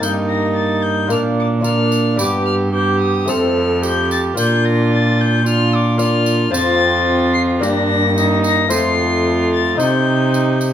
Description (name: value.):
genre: classical, renaissance-style consort dance.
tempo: 110 BPM.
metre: 4/4.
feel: straight.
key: unclear.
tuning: A4 = 439 Hz.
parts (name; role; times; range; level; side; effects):
dark violin; melody; 0.0-10.6 s; D6 to C7; -20 LUFS; left 5 dB; none.
rich viola; second line; 0.0-10.7 s; D4 to A4; -20 LUFS; right 5 dB; none.
lute; accompaniment; 0.0-10.7 s; F2 to Eb5; -23 LUFS; left 4 dB; none.
mellow trombone; accompaniment; 0.0-10.7 s; A3 to D4; -22 LUFS; left 2 dB; none.
rich cello; bass; 0.0-10.7 s; F2 to C3; -19 LUFS; right 1 dB; none.
tambourine; percussion; 0.0-10.7 s; none; -29 LUFS; right 4 dB; none.
room: moderate recital hall reverb, RT60 1.7 s.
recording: none.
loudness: -14 LUFS.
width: side -10 dB against mid.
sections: 0.0-10.7 A section.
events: none.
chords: 0.0 Eb/G; 1.1 Bb; 2.2 G; 3.3 F; 4.4 Bb; 6.5 F; 7.6 Gm; 8.7 F; 9.8 Cm.